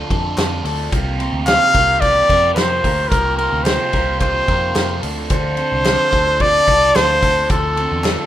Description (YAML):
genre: jangly indie pop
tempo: 110 BPM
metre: 4/4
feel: straight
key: D minor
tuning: A4 = 441 Hz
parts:
  - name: biting overdriven guitar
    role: accompaniment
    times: 0.0-8.3 s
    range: C3 to A4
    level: -25 LUFS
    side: right 3 dB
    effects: phaser
  - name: twelve-string electric guitar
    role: arpeggios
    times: 0.0-8.3 s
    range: C3 to Bb4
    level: -26 LUFS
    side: left 2 dB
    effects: wide subtle chorus, slapback echo
  - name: vintage muted picked electric bass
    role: bass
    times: 0.0-8.1 s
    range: C2 to F2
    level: -23 LUFS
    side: equal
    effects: none
  - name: loose indie drum kit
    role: drums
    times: 0.1-8.2 s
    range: hi-hat, kick drum, ride cymbal, snare drum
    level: -21 LUFS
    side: equal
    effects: none
  - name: group handclap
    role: percussion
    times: 0.4-8.2 s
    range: none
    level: -31 LUFS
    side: left 3 dB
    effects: none
  - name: clear trumpet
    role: melody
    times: 1.5-8.3 s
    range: A4 to F5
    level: -15 LUFS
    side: equal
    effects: slapback echo
room: moderate studio reverb, RT60 0.6 s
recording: rough home demo mix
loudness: -13 LUFS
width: side -12 dB against mid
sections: 0.0-8.3 A section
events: none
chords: 0.0 Dm7; 0.9 C7sus4; 5.0 Dm7